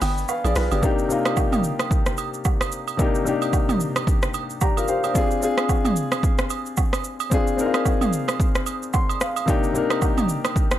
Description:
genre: amapiano.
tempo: 111 BPM.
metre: 4/4.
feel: swing 58% on 16ths.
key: C minor.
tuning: A4 = 439 Hz.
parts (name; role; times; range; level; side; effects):
warm grand piano; accompaniment; 0.0-10.8 s; C3 to C6; -24 LUFS; left 3 dB; none.
tight log drum bass; bass; 0.0-0.8 s; G1 to B1; -22 LUFS; equal; none.
deep house drum kit; drums; 0.0-10.8 s; hi-hat, kick drum, rim click, shaker, toms; -22 LUFS; right 1 dB; overdrive.
agogo bells and woodblock; percussion; 0.0-10.6 s; none; -30 LUFS; right 11 dB; none.
room: light reverb.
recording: dark, warm production.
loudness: -19 LUFS.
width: side -12 dB against mid.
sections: 0.8-10.8 A section.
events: break 0.0-0.8; grand piano fill 0.0-0.8, 4.3-5.2, 8.7-9.5.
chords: 0.0 G7b9; 0.8 Cm9; 5.2 Dm7b5; 9.5 Cm9.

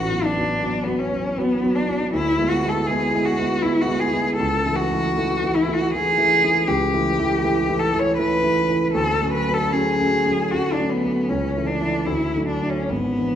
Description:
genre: classical, romantic duo for cello and grand piano.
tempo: 78 BPM.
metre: 3/4.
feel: uneven beats, rubato.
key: A major.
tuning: A4 = 441 Hz.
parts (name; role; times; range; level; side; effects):
warm cello; melody; 0.0-13.4 s; B3 to C#5; -21 LUFS; left 1 dB; none.
dark concert grand piano; accompaniment; 0.0-13.4 s; G#1 to F#4; -22 LUFS; right 1 dB; none.
room: wet recital hall reverb, RT60 1.7 s.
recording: dark, warm production.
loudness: -18 LUFS.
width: side -9 dB against mid.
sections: 0.0-13.4 A section.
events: none.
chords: 0.0 B5/A; 2.1 E7/D; 4.4 A/C#; 8.9 Dmaj7; 11.3 A/C#; 12.1 D.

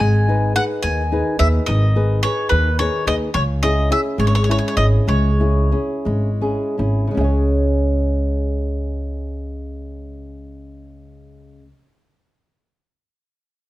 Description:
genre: italian folk, Italian serenade.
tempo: 50-72 BPM (dotted quarters).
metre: 6/8.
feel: straight.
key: C# minor.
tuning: A4 = 440 Hz.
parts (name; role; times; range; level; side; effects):
bowl-back mandolin; melody; 0.0-6.4 s; B4 to G#5; -22 LUFS; equal; none.
flamenco guitar; accompaniment; 0.0-11.8 s; C#3 to E5; -22 LUFS; left 1 dB; none.
upright bass; bass; 0.0-11.7 s; G#1 to D#2; -18 LUFS; equal; none.
room: little or no reverb.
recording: close, detailed microphones.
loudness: -16 LUFS.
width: side -16 dB against mid.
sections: 0.0-7.2 A section; 7.2-11.9 B section.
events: slowing down 3.3-7.2.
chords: 0.0 G#m; 3.3 C#m; 7.2 C#5.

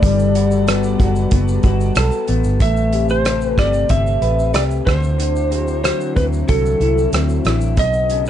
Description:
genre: indie pop, bedroom pop.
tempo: 93 BPM.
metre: 4/4.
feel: straight.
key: A dorian.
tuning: A4 = 445 Hz.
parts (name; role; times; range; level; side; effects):
electric slide guitar; melody; 0.0-8.2 s; A4 to E5; -20 LUFS; right 1 dB; wide subtle chorus, analog delay.
electric guitar through a small old amp; accompaniment; 0.0-8.3 s; B2 to B4; -21 LUFS; left 5 dB; wide subtle chorus, warbly pitch drift.
lush unison pad; sustained chords; 0.0-8.3 s; B2 to B4; -27 LUFS; equal; chorus.
vintage muted fingered electric bass; bass; 0.0-8.3 s; F#1 to D2; -18 LUFS; equal; none.
loose indie drum kit; drums; 0.0-8.3 s; hi-hat, kick drum, rim click, shaker; -19 LUFS; right 1 dB; none.
room: studio reverb.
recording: dark, warm production, nothing above 10.3 kHz.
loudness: -14 LUFS.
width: side -10 dB against mid.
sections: 0.0-2.6 A section; 2.6-8.3 B section.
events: none.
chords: 0.0 Gmaj9; 2.6 Am9; 4.9 D9; 7.8 B9.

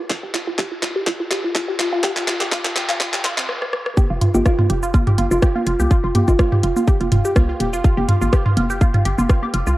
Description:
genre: minimal techno.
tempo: 124 BPM.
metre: 4/4.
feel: swing 54% on 16ths.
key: F minor.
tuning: A4 = 440 Hz.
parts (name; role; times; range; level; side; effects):
resonant blip pluck; riff; 0.0-9.7 s; C4 to G4; -24 LUFS; equal; phaser, cassette tape, sidechain pumping, analog delay.
hollow knocking FM bass; bass; 0.0-9.7 s; Eb1 to C2; -22 LUFS; equal; sidechain pumping, high-pass filter.
electronic kick drum; drums; 0.1-9.4 s; none; -15 LUFS; equal; high-pass filter on kick, cassette tape.
garage drum kit; drums; 0.1-9.8 s; handclaps, hi-hat, rim click, shaker; -24 LUFS; equal; cassette tape.
electronic congas and toms; percussion; 4.0-9.5 s; none; -19 LUFS; equal; overdrive, cassette tape.
kalimba; melody; 4.3-6.8 s; F4; -23 LUFS; right 1 dB; cassette tape, analog delay.
room: moderate spring reverb, RT60 2.1 s.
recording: home recording on cassette, high-pass filter.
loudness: -16 LUFS.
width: side -17 dB against mid.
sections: 0.0-4.0 A section; 4.0-9.8 B section.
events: build-up 0.0-4.0; drum fill 0.0-3.5, 3.5-4.0; filter sweep on synth arpeggio sound 0.0-4.0; stop 3.5-4.0; drop 4.0-9.8.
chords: none.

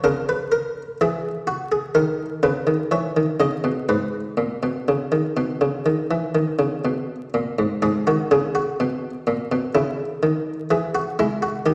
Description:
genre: classical, baroque-style two-part invention for harpsichord.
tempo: 62 BPM.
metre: 4/4.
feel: straight.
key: G# minor.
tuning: A4 = 441 Hz.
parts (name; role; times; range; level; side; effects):
buff-stop harpsichord; solo; 0.0-11.7 s; G#2 to D#5; -22 LUFS; equal; none.
room: wet recital hall reverb, RT60 1.6 s.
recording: heard from further back in the room, vinyl crackle.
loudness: -22 LUFS.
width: mono.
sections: 0.0-7.8 A section; 7.8-11.7 B section.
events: none.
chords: 0.1 A#dim/C#; 2.0 D#5; 3.9 G#m; 9.8 C#m.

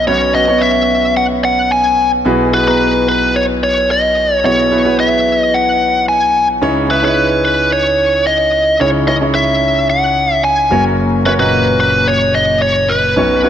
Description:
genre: pop.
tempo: 110 BPM.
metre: 4/4.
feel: straight.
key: unclear.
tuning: A4 = 442 Hz.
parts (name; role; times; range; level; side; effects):
biting lead guitar; melody; 0.0-13.5 s; B4 to G#5; -12 LUFS; equal; overdrive, ping-pong delay.
warm concert grand piano; accompaniment; 0.0-13.5 s; F#1 to A#5; -15 LUFS; equal; none.
room: moderate lush hall reverb, RT60 2.7 s.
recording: none.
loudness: -10 LUFS.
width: side -9 dB against mid.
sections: 0.0-13.5 A section.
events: none.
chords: 0.0 Bsus2; 2.3 Eadd9/B; 6.6 C#madd9; 10.7 F#.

